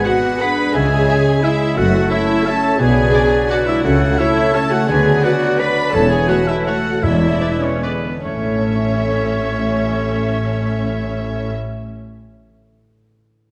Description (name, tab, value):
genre	classical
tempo	135-188 BPM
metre	3/4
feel	rubato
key	A major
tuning	A4 = 440 Hz
part	clear clarinet	second line	0.0-11.5 s	G#4 to E5	-29 LUFS	equal	none
part	clear oboe	second line	0.0-11.5 s	B4 to B5	-26 LUFS	equal	none
part	rich chamber violin section	second line	0.0-11.5 s	B4 to B5	-30 LUFS	equal	none
part	silver concert flute	second line	0.0-11.5 s	B4 to F#5	-30 LUFS	equal	none
part	rich studio viola section	accompaniment	0.0-11.5 s	B3 to B4	-22 LUFS	equal	none
part	warm bassoon	accompaniment	0.0-11.5 s	E3 to B3	-29 LUFS	equal	none
part	mellow French horn section	sustained chords	0.0-11.5 s	D3 to D4	-28 LUFS	equal	none
part	concert harp	arpeggios	0.0-12.4 s	F#2 to E6	-28 LUFS	equal	none
part	rich chamber violin section	melody	0.1-11.5 s	B4 to F#5	-32 LUFS	equal	none
part	rich chamber cello section	bass	0.8-11.5 s	E2 to D3	-25 LUFS	equal	none
part	rich studio double bass section	bass	0.8-11.5 s	E1 to D2	-26 LUFS	equal	none
part	timpani	percussion	7.0-12.2 s	E2 to A2	-28 LUFS	equal	none
room	wet scoring stage reverb, RT60 1.7 s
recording	none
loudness	-16 LUFS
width	mono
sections	0.0-8.3 A section; 8.3-10.8 B section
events	slowing down 5.4-8.3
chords	0.0 G#m7b5; 0.7 C#m; 1.8 F#m7; 2.8 Bm; 3.8 A/C#; 4.9 Bm/D; 5.9 A/E; 7.0 E7; 8.3 A